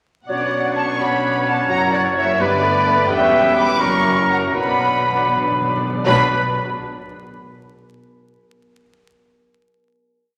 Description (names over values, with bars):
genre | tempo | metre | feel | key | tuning
classical, dramatic, fast romantic movement for symphony orchestra | 77-87 BPM (dotted quarters) | 6/8 | rubato | B minor | A4 = 440 Hz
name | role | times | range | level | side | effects
dark symphonic violin section | melody | 0.3-6.3 s | D5 to D6 | -27 LUFS | equal | none
bright small flute group | second line | 0.3-6.3 s | B4 to B5 | -24 LUFS | equal | none
clear clarinet | second line | 0.3-6.3 s | B3 to D4 | -32 LUFS | equal | none
clear symphonic violin section | second line | 0.3-6.3 s | B4 to D6 | -31 LUFS | equal | none
warm oboe | second line | 0.3-6.3 s | A#4 to C#5 | -23 LUFS | equal | none
mellow bassoon | accompaniment | 0.3-6.3 s | F#3 to A3 | -28 LUFS | equal | none
rich symphonic viola section | accompaniment | 0.3-6.3 s | B3 to D5 | -31 LUFS | equal | none
mellow French horn section | sustained chords | 0.3-6.3 s | A#3 to E4 | -33 LUFS | equal | none
clear symphonic double bass section | bass | 0.3-6.3 s | E1 to B1 | -33 LUFS | equal | none
rich symphonic cello section | bass | 0.3-6.3 s | E2 to B2 | -30 LUFS | equal | none
timpani | percussion | 4.6-6.3 s | B2 | -32 LUFS | equal | none
room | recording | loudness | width
wet scoring stage reverb, RT60 2.0 s | vinyl crackle | -18 LUFS | mono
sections
0.3-6.1 A section; 6.1-7.5 final chord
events
timpani fill 4.6-6.1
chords
0.3 Bm; 1.7 F#7; 2.4 G; 3.1 C#m7b5/E; 3.8 F#7b9; 4.6 Bm